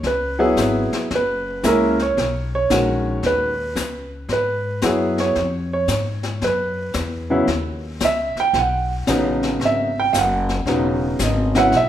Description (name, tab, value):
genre	jazz piano trio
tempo	113 BPM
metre	4/4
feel	swing 67% on 8ths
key	unclear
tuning	A4 = 439 Hz
part	upright bass	bass	0.0-11.9 s	E1 to G#2	-25 LUFS	left 1 dB	none
part	jazz brush drum kit	drums	0.0-11.9 s	brushed snare drum, hi-hat, snare drum	-27 LUFS	left 4 dB	none
part	warm grand piano	melody	0.1-11.9 s	C#3 to G5	-19 LUFS	right 1 dB	none
room	moderate recital hall reverb, RT60 1.3 s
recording	recorded in a church or concert hall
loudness	-18 LUFS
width	side -11 dB against mid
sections	0.0-11.9 A section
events	grand piano solo 0.0-11.9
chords	0.0 C#m7; 1.1 F#9; 2.2 Bmaj9; 4.3 F#9sus4; 5.4 C#; 6.4 F#7sus4; 8.5 B7; 10.7 Emaj9